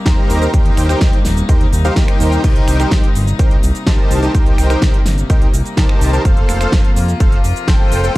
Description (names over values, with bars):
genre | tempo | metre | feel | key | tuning
EDM, festival progressive house | 126 BPM | 4/4 | straight | unclear | A4 = 441 Hz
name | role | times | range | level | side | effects
rich chamber string section | sustained chords | 0.0-8.2 s | C3 to F4 | -24 LUFS | left 2 dB | sidechain pumping
dense compressed supersaw | riff | 0.1-8.2 s | Eb4 to Bb5 | -19 LUFS | equal | cassette tape, sidechain pumping, tape echo
fat analog bass | bass | 0.1-8.2 s | Eb1 to F2 | -17 LUFS | equal | sidechain pumping
big-room dance drum kit | drums | 0.1-8.2 s | cabasa, crash cymbal, finger snaps, hi-hat, snare drum | -23 LUFS | equal | none
electronic kick drum | drums | 0.1-8.2 s | none | -13 LUFS | equal | none
room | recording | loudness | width
digital ambience | dark, warm production | -11 LUFS | side -18 dB against mid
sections
0.0-8.2 A section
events
none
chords
0.0 Eb6; 2.4 Cm7; 6.3 F